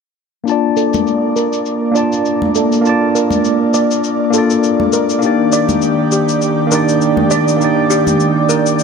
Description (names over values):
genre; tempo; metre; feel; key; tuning
sunset chillout; 101 BPM; 4/4; swing 57% on 16ths; Bb major; A4 = 440 Hz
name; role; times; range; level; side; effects
tine electric piano; accompaniment; 0.4-8.8 s; Bb3 to A5; -14 LUFS; moving between left 8 dB and right 5 dB; auto-pan, low-pass filter, digital delay
airy breathy pad; sustained chords; 0.5-8.8 s; Eb3 to D5; -17 LUFS; equal; chorus
cabasa; drums; 0.5-8.8 s; none; -24 LUFS; left 8 dB; low-pass filter on perc, low-pass filter on room
steel pan; arpeggios; 0.8-8.8 s; G4 to D5; -21 LUFS; right 3 dB; low-pass filter, digital delay, shimmer reverb
congas; percussion; 0.9-8.2 s; none; -22 LUFS; left 3 dB; none
room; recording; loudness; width
moderate plate reverb, RT60 2.5 s; none; -12 LUFS; side -5 dB against mid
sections
0.5-8.8 A section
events
filter sweep on tine electric piano 0.5-8.8; filter sweep on steel pan 0.5-8.8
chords
0.5 Bbmaj7; 5.2 Ebmaj7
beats
| 0.47 1.07 1.66 2.26 | 2.85 3.44 4.04 4.63 | 5.23 5.82 6.41 7.01 | 7.60 8.20 8.79